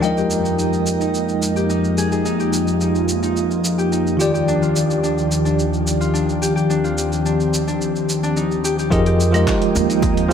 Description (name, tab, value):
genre	sunset chillout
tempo	108 BPM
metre	4/4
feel	straight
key	F dorian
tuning	A4 = 440 Hz
part	bell-like tine electric piano	accompaniment	0.0-10.3 s	Eb3 to G5	-21 LUFS	moving between left 2 dB and right 6 dB	fast stereo tremolo, auto-pan, digital delay, shimmer reverb
part	airy breathy pad	sustained chords	0.0-10.3 s	Eb2 to G5	-20 LUFS	equal	chorus, shimmer reverb
part	Celtic harp	arpeggios	0.0-10.3 s	D4 to Bb4	-25 LUFS	left 4 dB	low-pass filter, digital delay, shimmer reverb
part	dusty soul sampler-style drum kit	drums	0.0-10.3 s	claves, handclaps, hi-hat, shaker	-28 LUFS	right 2 dB	none
part	upright bass	bass	8.9-10.3 s	Eb2 to F2	-19 LUFS	right 1 dB	none
part	electronic kick drum	drums	8.9-10.1 s	none	-21 LUFS	right 1 dB	overdrive
part	bongos	percussion	9.2-10.1 s	none	-30 LUFS	left 5 dB	none
room	moderate plate reverb, RT60 1.6 s, small room ambience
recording	none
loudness	-16 LUFS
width	side -8 dB against mid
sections	0.0-8.9 A section; 8.9-10.3 B section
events	filter sweep on analog synth pad 0.0-8.9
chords	0.0 Fm11; 4.2 Ebmaj9; 8.9 Fm11